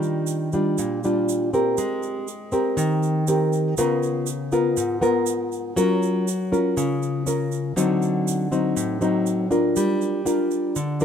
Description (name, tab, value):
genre	bossa nova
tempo	120 BPM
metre	4/4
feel	straight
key	unclear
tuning	A4 = 441 Hz
part	nylon-string guitar	accompaniment	0.0-11.0 s	Ab2 to Bb4	-20 LUFS	left 1 dB	none
part	tube shaker	percussion	0.0-11.0 s	none	-34 LUFS	right 9 dB	none
room	moderate plate reverb, RT60 3.6 s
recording	minimal, uncompressed stereo recording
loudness	-20 LUFS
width	side -8 dB against mid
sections	0.0-1.8 A section; 1.8-11.0 B section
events	none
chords	0.0 Ebmaj9; 1.8 Abmaj9; 3.8 Db6; 5.8 Gbmaj7; 7.8 D7b9; 9.8 Gm7